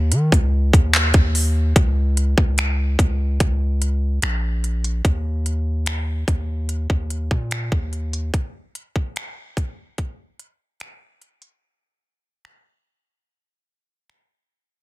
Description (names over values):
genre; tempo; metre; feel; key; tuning
contemporary R&B; 73 BPM; 4/4; straight; unclear; A4 = 440 Hz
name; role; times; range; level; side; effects
long sustained 808-style bass; bass; 0.0-8.3 s; Bb1 to Eb3; -20 LUFS; equal; none
organic electronic drum kit; drums; 0.1-14.3 s; finger snaps, handclaps, hi-hat, kick drum; -19 LUFS; equal; soft clipping on snare
room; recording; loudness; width
little or no reverb; dense, heavily limited modern master; -18 LUFS; side -19 dB against mid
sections
0.0-1.8 A section; 1.8-14.8 B section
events
fade-out 1.8-14.8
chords
none